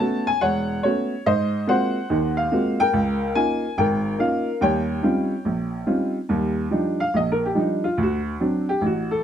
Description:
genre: solo jazz.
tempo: 143 BPM.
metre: 4/4.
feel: swing 65% on 8ths.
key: unclear.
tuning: A4 = 440 Hz.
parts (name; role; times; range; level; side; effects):
warm upright piano; solo; 0.0-9.2 s; E1 to A5; -20 LUFS; equal; none.
room: moderate club reverb, RT60 0.5 s.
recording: close, detailed microphones.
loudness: -20 LUFS.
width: side -9 dB against mid.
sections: 0.0-6.3 A section; 6.3-9.2 B section.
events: upright piano solo 6.3-9.2.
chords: 0.0 A69; 1.3 Ab13; 2.9 Db69; 4.6 Eb13; 6.3 Ebmaj9; 8.0 D7.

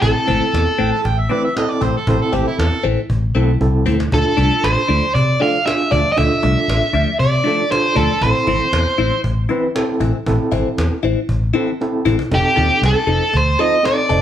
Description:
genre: straight-eighth soul blues.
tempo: 117 BPM.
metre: 4/4.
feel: straight.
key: A minor.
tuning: A4 = 438 Hz.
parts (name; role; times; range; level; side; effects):
overdriven electric guitar; melody; 0.0-1.0, 4.1-9.2, 12.3-14.2 s; G4 to F5; -17 LUFS; right 1 dB; spring reverb.
overdriven tine electric piano; accompaniment; 0.0-14.2 s; C4 to B4; -21 LUFS; right 1 dB; fast tremolo.
vintage muted fingered electric bass; bass; 0.0-14.2 s; F1 to C3; -19 LUFS; equal; none.
cajon; drums; 0.0-14.2 s; none; -25 LUFS; equal; none.
direct-recorded clean electric guitar; stabs; 0.3-14.2 s; E3 to A4; -21 LUFS; left 5 dB; phaser.
overdriven harmonica; second line; 0.8-2.8 s; E4 to A5; -23 LUFS; right 4 dB; none.
room: moderate studio reverb, RT60 0.8 s.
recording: band playing live in one room.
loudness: -14 LUFS.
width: side -10 dB against mid.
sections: 0.0-14.2 A section.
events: drum fill 3.6-4.1, 11.8-12.3.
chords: 0.0 Am; 4.1 Dm; 8.2 Am; 12.3 F7.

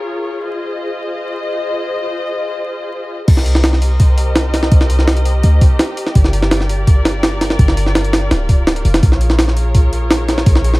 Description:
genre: drum and bass, jungle.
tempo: 167 BPM.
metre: 4/4.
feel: straight.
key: C minor.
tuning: A4 = 435 Hz.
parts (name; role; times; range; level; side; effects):
muted studio string section; sustained chords; 0.0-10.8 s; F4 to Eb5; -22 LUFS; left 1 dB; none.
warm 808-style bass; bass; 3.3-10.8 s; D1 to D2; -14 LUFS; equal; none.
jungle sampler-style drum kit; drums; 3.3-10.8 s; crash cymbal, hi-hat, kick drum, snare drum; -13 LUFS; equal; none.
room: little or no reverb.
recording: vinyl crackle.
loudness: -12 LUFS.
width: side -20 dB against mid.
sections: 0.0-3.3 A section; 3.3-10.8 B section.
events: drop 3.3-10.8.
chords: 0.4 Fm7; 3.3 Cm7; 6.2 Gm7; 9.0 Bbm7.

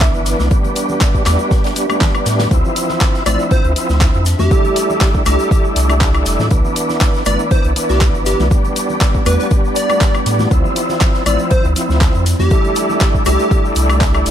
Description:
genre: deep house.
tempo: 120 BPM.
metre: 4/4.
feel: swing 54% on 16ths.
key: unclear.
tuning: A4 = 436 Hz.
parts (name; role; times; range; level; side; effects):
warbly tape-like pad; sustained chords; 0.0-14.3 s; F3 to E5; -25 LUFS; equal; chorus, built-in reverb, vintage 12-bit sampler grit, sidechain pumping.
overdriven tonewheel organ; stabs; 0.0-14.3 s; E3 to E4; -19 LUFS; equal; chorus vibrato, fast rotary speaker, sidechain pumping, tape echo.
warm sub bass; bass; 0.0-14.3 s; F1 to A2; -16 LUFS; equal; tube saturation, sidechain pumping.
big rock drum kit; drums; 0.0-14.3 s; hi-hat, snare drum; -31 LUFS; left 3 dB; none.
deep house drum kit; drums; 0.0-14.3 s; handclaps, hi-hat, snare drum, woodblock; -21 LUFS; left 1 dB; none.
electronic kick drum; drums; 0.0-14.1 s; none; -14 LUFS; equal; none.
tube shaker; percussion; 0.0-14.3 s; none; -31 LUFS; left 2 dB; none.
congas and bongos; percussion; 0.4-14.2 s; none; -27 LUFS; left 4 dB; none.
plucky unison lead; melody; 3.3-13.6 s; G4 to D5; -21 LUFS; equal; ping-pong delay.
room: light reverb, small room ambience.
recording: none.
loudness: -12 LUFS.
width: side -10 dB against mid.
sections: 0.0-14.3 A section.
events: drum fill 2.0-2.5.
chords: 0.0 Cmaj9; 0.5 Em7; 2.5 Dm9; 4.3 Fmaj13; 6.5 Cmaj9; 8.5 Em7; 10.5 Dm9; 12.3 Fmaj13 (rootless).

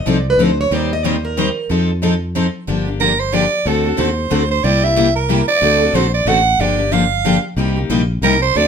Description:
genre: acoustic string swing (jazz manouche).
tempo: 184 BPM.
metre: 3/4.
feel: swing 59% on 8ths.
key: G minor.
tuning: A4 = 442 Hz.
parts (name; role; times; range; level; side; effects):
picked plugged-in steel-string acoustic guitar; melody; 0.0-1.7 s; Bb4 to Eb5; -19 LUFS; right 2 dB; none.
picked steel-string acoustic guitar; accompaniment; 0.1-8.7 s; C3 to C5; -19 LUFS; left 6 dB; none.
picked steel-string acoustic guitar; accompaniment; 0.1-8.7 s; C3 to C5; -22 LUFS; right 5 dB; none.
fretless electric bass; bass; 0.1-8.7 s; G1 to F2; -19 LUFS; left 1 dB; none.
growling soprano saxophone; second line; 3.0-8.7 s; A4 to F#5; -15 LUFS; right 4 dB; none.
room: moderate studio reverb, RT60 0.6 s.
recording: minimal, uncompressed stereo recording.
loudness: -13 LUFS.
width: side -7 dB against mid.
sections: 0.0-2.7 A section; 2.7-8.7 A section.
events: steel-string acoustic guitar solo 0.0-2.7; soprano saxophone solo 2.7-8.7.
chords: 0.0 F7; 0.7 Eb6; 1.7 F7; 2.7 Gm7; 3.7 D7; 4.6 C7; 5.6 D7; 6.6 Gm7; 7.6 Cm7.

